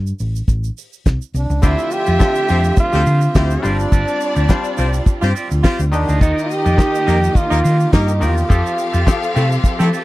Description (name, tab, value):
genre	disco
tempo	105 BPM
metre	4/4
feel	straight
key	unclear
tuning	A4 = 436 Hz
part	hollow-body short-scale fingered electric bass	bass	0.0-9.9 s	G1 to F3	-16 LUFS	equal	none
part	tube shaker	percussion	0.1-10.0 s	none	-37 LUFS	right 19 dB	none
part	damped 70s drum kit	drums	0.2-10.0 s	crash cymbal, handclaps, hi-hat, kick drum, snare drum	-14 LUFS	equal	none
part	clear trombone	melody	1.4-9.4 s	D4 to G4	-20 LUFS	right 2 dB	none
part	warm studio violin section	second line	1.6-10.0 s	D4 to F5	-26 LUFS	left 3 dB	none
part	clav	accompaniment	1.6-10.0 s	D3 to E5	-27 LUFS	left 3 dB	none
part	electric guitar with an envelope filter	accompaniment	1.6-10.0 s	C4 to F5	-28 LUFS	right 4 dB	none
part	clear studio string section	sustained chords	1.6-10.0 s	D3 to E5	-25 LUFS	right 1 dB	none
part	warm horn section	stabs	2.5-9.9 s	A3 to C5	-21 LUFS	left 2 dB	none
room	little or no reverb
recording	dry, close 1970s-style studio recording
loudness	-14 LUFS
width	side -18 dB against mid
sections	0.0-1.6 A section; 1.6-10.0 B section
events	none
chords	0.0 F (rootless); 1.6 Dm11; 3.6 G7sus4; 5.9 Ebmaj7; 8.5 Fmaj9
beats	0.49 1.06 | 1.63 2.21 2.78 3.35 | 3.92 4.49 5.07 5.64 | 6.21 6.78 7.35 7.92 | 8.50 9.07 9.64